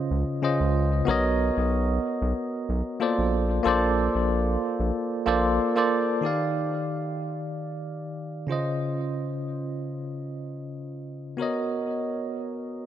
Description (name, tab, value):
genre	sunset chillout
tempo	93 BPM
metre	4/4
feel	swing 54% on 16ths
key	unclear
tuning	A4 = 439 Hz
part	bell-like tine electric piano	accompaniment	0.0-12.9 s	Db3 to F5	-25 LUFS	equal	auto-pan, tape echo
part	round analog bass	bass	0.1-5.6 s	A#1 to Db2	-26 LUFS	equal	none
room	moderate lush hall reverb, RT60 2.5 s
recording	none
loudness	-24 LUFS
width	side -11 dB against mid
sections	0.0-6.2 A section; 6.2-12.9 B section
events	none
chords	0.0 Dbmaj9; 1.1 Bmaj9; 3.3 Bbmaj9; 6.2 Ebmaj9; 8.5 Dbmaj9; 11.4 Bmaj9